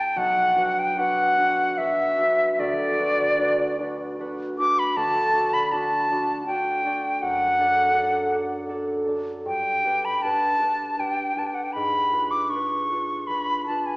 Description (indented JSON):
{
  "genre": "classical, romantic duo for flute and harp",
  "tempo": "72-82 BPM",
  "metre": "3/4",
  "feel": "rubato",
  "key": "B minor",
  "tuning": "A4 = 439 Hz",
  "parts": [
    { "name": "bright concert flute", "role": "melody", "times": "0.0-14.0 s", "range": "D5 to D6", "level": "-21 LUFS", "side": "equal", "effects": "none" },
    { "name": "concert harp", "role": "accompaniment", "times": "0.0-14.0 s", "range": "B1 to D5", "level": "-29 LUFS", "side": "right 1 dB", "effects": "none" }
  ],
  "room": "wet concert hall reverb, RT60 2.0 s",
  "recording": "recorded in a church or concert hall, small speaker sound",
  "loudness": "-21 LUFS",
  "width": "side -24 dB against mid",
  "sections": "0.2-14.0 A section",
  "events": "none",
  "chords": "0.2 Bm; 2.6 Bm/D; 5.0 D; 7.2 D/F#; 9.5 G; 11.7 G#dim7",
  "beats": "| 0.16 0.97 1.78 | 2.58 3.38 4.19 | 4.96 5.71 6.47 | 7.22 7.97 8.70 | 9.46 10.23 10.99 | 11.73 12.51 13.28"
}